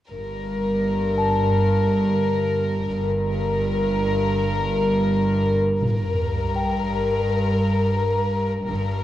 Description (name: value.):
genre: cinematic, suspense film score.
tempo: 84 BPM.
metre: 4/4.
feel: straight.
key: G minor.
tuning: A4 = 440 Hz.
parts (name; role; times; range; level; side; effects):
warm symphonic violin section; melody; 0.1-9.0 s; Bb4; -24 LUFS; left 2 dB; none.
rich symphonic cello section; bass; 0.1-9.0 s; G2; -23 LUFS; right 1 dB; none.
rich symphonic double bass section; bass; 0.1-9.0 s; G1; -26 LUFS; right 2 dB; none.
celesta; texture; 1.2-9.0 s; Bb4 to Bb5; -29 LUFS; left 4 dB; none.
sub drop; sound effects; 5.8-8.7 s; none; -29 LUFS; equal; none.
room: moderate scoring stage reverb, RT60 1.6 s.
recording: worn, warbling old tape, cassette tape, warbly pitch drift.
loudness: -19 LUFS.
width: side -13 dB against mid.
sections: 0.1-5.8 A section; 5.8-9.0 B section.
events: impact 5.8-8.7.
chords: 0.1 Gm.